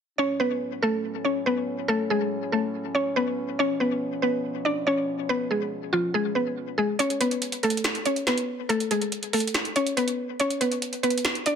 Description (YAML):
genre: hip hop, trap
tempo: 141 BPM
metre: 4/4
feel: half-time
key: F# harmonic minor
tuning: A4 = 440 Hz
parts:
  - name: mallet-like synth pluck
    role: melody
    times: 0.2-11.6 s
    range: E#3 to D5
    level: -24 LUFS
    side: equal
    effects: chorus, low-pass filter, ping-pong delay
  - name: mellow French horn section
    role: sustained chords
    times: 0.2-7.0 s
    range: A2 to C#4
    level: -34 LUFS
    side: equal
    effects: none
  - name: trap drum kit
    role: drums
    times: 7.0-11.6 s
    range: finger snaps, hi-hat, snare drum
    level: -28 LUFS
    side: right 1 dB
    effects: none
room: light reverb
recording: none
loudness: -23 LUFS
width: side -7 dB against mid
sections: 0.2-7.0 A section; 7.0-11.6 B section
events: kick muted 7.0-11.6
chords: 0.2 F#madd9; 3.6 C#7; 7.0 Amaj9; 10.4 C#7(no3)